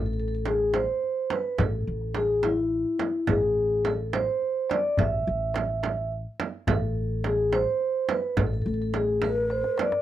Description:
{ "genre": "Persian modal ensemble", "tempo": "71 BPM (dotted quarters)", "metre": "6/8", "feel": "straight", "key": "A avaz esfahan", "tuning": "A4 = 440 Hz", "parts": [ { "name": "vibraphone with soft mallets", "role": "melody", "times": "0.0-10.0 s", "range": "E4 to E5", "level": "-26 LUFS", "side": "equal", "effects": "none" }, { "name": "upright bass", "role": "bass", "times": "0.0-9.6 s", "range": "A1", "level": "-30 LUFS", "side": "left 1 dB", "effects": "none" }, { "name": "frame drum", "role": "percussion", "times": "0.5-9.9 s", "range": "none", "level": "-31 LUFS", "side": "right 7 dB", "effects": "none" }, { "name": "tombak", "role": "percussion", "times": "0.5-10.0 s", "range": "none", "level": "-31 LUFS", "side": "left 1 dB", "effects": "none" }, { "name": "breathy mellow ney", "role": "second line", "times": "9.2-10.0 s", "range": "Bb4+46c", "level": "-31 LUFS", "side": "left 4 dB", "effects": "none" } ], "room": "light reverb", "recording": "dry, close 1970s-style studio recording", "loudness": "-24 LUFS", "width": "side -12 dB against mid", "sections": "0.0-10.0 A section", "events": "drum fill 9.5-10.0", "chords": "none", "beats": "0.75 | 1.59 2.44 | 3.29 4.14 | 4.99 5.84 | 6.68 7.53 | 8.38 9.23" }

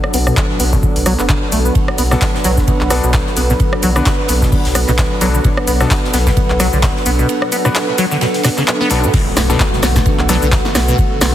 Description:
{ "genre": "acid house", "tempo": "130 BPM", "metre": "4/4", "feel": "swing 57% on 16ths", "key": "B minor", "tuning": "A4 = 440 Hz", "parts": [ { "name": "warm analog pad", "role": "sustained chords", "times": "0.0-11.3 s", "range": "D3 to B4", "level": "-22 LUFS", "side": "right 2 dB", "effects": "chorus, sidechain pumping" }, { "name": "electro analog drum machine", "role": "drums", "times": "0.0-11.3 s", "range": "cabasa, crash cymbal, handclaps, hi-hat, rim click, snare drum", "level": "-19 LUFS", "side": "equal", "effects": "none" }, { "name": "warbly tape-like pad", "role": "texture", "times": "0.0-11.3 s", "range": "D4 to F#5", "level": "-22 LUFS", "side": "left 1 dB", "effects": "chorus, built-in reverb, phaser, sidechain pumping" }, { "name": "liquid acid bass", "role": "riff", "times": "0.1-11.3 s", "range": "B1 to B3", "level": "-20 LUFS", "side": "equal", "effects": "tube saturation, lush chorus, sidechain pumping, digital delay" }, { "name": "warm sub bass", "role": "bass", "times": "0.1-11.3 s", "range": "F#1 to B1", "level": "-17 LUFS", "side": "equal", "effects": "sidechain pumping" }, { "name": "electronic kick drum", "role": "drums", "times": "0.4-11.1 s", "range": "none", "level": "-16 LUFS", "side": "equal", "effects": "none" }, { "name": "crisp fusion drum kit", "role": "drums", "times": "1.8-11.3 s", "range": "hi-hat, ride cymbal, snare drum", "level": "-28 LUFS", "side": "right 2 dB", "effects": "high-pass filter on cymbals, high-pass filter on hats, high-pass filter on snare, high-pass filter on room" }, { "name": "bright grand piano", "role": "stabs", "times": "2.1-10.4 s", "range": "B3 to B4", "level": "-23 LUFS", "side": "left 4 dB", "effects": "digital delay" }, { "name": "impact", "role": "sound effects", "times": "9.1-11.0 s", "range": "none", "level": "-24 LUFS", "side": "right 1 dB", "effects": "none" } ], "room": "light reverb, digital ambience", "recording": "heavily compressed radio sound, multiband compression", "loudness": "-12 LUFS", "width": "side -12 dB against mid", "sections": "0.0-9.1 A section; 9.1-11.3 B section", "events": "filter sweep on acid bass 0.0-9.1; drop 9.1-11.3; impact 9.1-11.0", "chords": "0.0 Bm7", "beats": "0.37 0.83 1.29 | 1.75 2.21 2.67 3.14 | 3.60 4.06 4.52 4.98 | 5.45 5.91 6.37 6.83 | 7.29 7.75 8.21 8.68 | 9.14 9.60 10.06 10.52 | 10.98" }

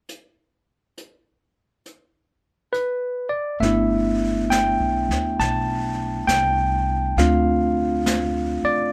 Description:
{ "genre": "jazz ballad", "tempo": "68 BPM", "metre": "4/4", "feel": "swing 67% on 8ths", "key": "G major", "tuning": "A4 = 441 Hz", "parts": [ { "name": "jazz brush drum kit", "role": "drums", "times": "0.1-8.9 s", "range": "brushed snare drum, hi-hat, snare drum", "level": "-32 LUFS", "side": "equal", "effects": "none" }, { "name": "barky tine electric piano", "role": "accompaniment", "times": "2.7-8.9 s", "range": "A3 to A5", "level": "-22 LUFS", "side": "equal", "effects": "none" }, { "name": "upright bass", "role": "bass", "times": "3.6-8.7 s", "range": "G1 to D2", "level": "-28 LUFS", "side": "equal", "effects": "none" } ], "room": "light reverb", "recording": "none", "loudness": "-22 LUFS", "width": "mono", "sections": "0.1-3.6 A section; 3.6-8.9 B section", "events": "none", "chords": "0.1 N.C.; 3.6 G69; 7.2 Dm7", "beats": "| 0.08 0.97 1.85 2.73 | 3.62 4.50 5.39 6.28 | 7.16 8.05" }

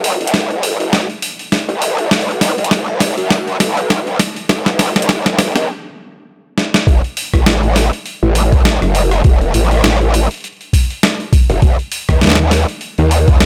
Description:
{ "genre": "glitch hop", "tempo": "101 BPM", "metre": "4/4", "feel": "swing 57% on 16ths", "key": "F# dorian", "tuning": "A4 = 440 Hz", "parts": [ { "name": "growl bass", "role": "bass", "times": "0.0-13.5 s", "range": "E1 to F#2", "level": "-17 LUFS", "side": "equal", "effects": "chorus, tube saturation, high-pass filter" }, { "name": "boom bap sampler-style drum kit", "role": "drums", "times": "0.0-13.5 s", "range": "hi-hat, rim click, snare drum", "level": "-18 LUFS", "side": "equal", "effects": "none" }, { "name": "electronic kick drum", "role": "drums", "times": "0.3-13.4 s", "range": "none", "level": "-14 LUFS", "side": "equal", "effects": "high-pass filter on kick, high-pass filter on room" } ], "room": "little or no reverb", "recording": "none", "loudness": "-14 LUFS", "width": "mono", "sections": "0.0-6.9 A section; 6.9-13.5 B section", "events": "build-up 0.0-6.9; drum fill 0.0-5.7, 6.6; stop 5.7-6.9; drop 6.9-13.5", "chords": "none", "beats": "0.34 0.93 1.52 | 2.12 2.71 3.31 3.90 | 4.50 5.09 5.68 6.28 | 6.87 7.46 8.06 8.65 | 9.25 9.84 10.44 11.03 | 11.62 12.22 12.81 13.41" }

